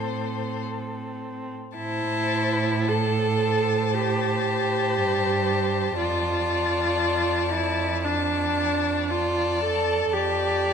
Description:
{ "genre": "classical, slow romantic movement for string quartet", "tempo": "52-60 BPM", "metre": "4/4", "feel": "rubato", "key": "A minor", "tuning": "A4 = 440 Hz", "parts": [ { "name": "rich violin", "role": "melody", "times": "0.0-10.7 s", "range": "C5 to A5", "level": "-29 LUFS", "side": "left 10 dB", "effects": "none" }, { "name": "dark violin", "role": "second line", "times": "0.0-10.7 s", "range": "A4 to D5", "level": "-31 LUFS", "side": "left 3 dB", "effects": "none" }, { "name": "rich viola", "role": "accompaniment", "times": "0.0-10.7 s", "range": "C4 to A4", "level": "-25 LUFS", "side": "right 2 dB", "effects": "none" }, { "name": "clear cello", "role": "bass", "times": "0.0-10.7 s", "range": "F2 to A2", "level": "-29 LUFS", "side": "right 4 dB", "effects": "none" } ], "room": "moderate concert hall reverb, RT60 1.9 s", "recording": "none", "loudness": "-22 LUFS", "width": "side -7 dB against mid", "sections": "0.0-1.8 A section; 1.8-10.7 A section", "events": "none", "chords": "0.0 Am; 6.0 Dm/F; 10.1 Dmadd11" }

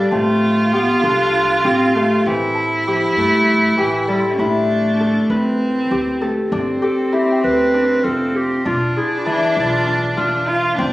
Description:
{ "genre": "contemporary instrumental, chamber music in an uneven meter", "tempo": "197 BPM (eighths)", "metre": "7/8", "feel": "straight", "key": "unclear", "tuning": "A4 = 438 Hz", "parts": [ { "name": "mellow clarinet", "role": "melody", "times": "0.0-10.1 s", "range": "E3 to B4", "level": "-19 LUFS", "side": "equal", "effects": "none" }, { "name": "warm cello", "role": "second line", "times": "0.0-10.9 s", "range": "A3 to F4", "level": "-19 LUFS", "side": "right 1 dB", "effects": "none" }, { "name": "Celtic harp", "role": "arpeggios", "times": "0.0-10.9 s", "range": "E3 to B4", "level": "-20 LUFS", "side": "left 2 dB", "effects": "none" }, { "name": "upright bass", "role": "bass", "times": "0.0-10.9 s", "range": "E1 to G2", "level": "-28 LUFS", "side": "equal", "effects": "none" }, { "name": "celesta", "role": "texture", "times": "0.0-10.9 s", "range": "A4 to C6", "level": "-30 LUFS", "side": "left 2 dB", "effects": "none" } ], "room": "light reverb", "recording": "recorded on a phone in the room, studio reverb, compression", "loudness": "-14 LUFS", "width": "side -17 dB against mid", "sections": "0.0-6.5 A section; 6.5-10.9 B section", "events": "none", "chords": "0.1 Fsus2/A; 2.3 C6/A; 4.4 Amadd9; 6.5 G7sus4; 8.7 E7b9" }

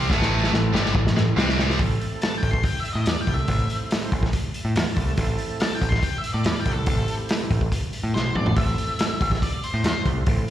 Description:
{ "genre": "blues rock power trio and southern rock", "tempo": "142 BPM", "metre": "4/4", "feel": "straight", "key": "A minor", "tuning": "A4 = 442 Hz", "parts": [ { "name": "overdriven tonewheel organ", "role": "sustained chords", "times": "0.0-10.5 s", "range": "G3 to A5", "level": "-34 LUFS", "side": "right 5 dB", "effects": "chorus vibrato, slow rotary speaker" }, { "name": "tight distorted guitar", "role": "riff", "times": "0.0-1.8 s", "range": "G2 to C4", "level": "-23 LUFS", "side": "equal", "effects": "distortion, slapback echo" }, { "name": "growling picked electric bass", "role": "bass", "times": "0.0-10.4 s", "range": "G1 to A2", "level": "-24 LUFS", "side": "equal", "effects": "overdrive" }, { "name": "vintage drum kit", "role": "drums", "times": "0.1-10.4 s", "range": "hi-hat, kick drum, snare drum, toms", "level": "-24 LUFS", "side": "equal", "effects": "none" }, { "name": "octave-fuzz lead guitar", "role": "melody", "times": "2.2-10.1 s", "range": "A4 to C6", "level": "-29 LUFS", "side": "left 2 dB", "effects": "distortion, slapback echo, digital delay" } ], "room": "studio ambience", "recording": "live gig heard through the venue's PA, recital hall reverb", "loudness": "-20 LUFS", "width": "side -12 dB against mid", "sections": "0.0-1.8 A section; 1.8-10.5 B section", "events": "drum fill 0.1-1.8, 8.1-8.6; lead electric guitar solo 1.8-10.5; tonewheel organ fill 4.3-5.2", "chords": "0.1 Am; 1.4 C5; 1.8 Am" }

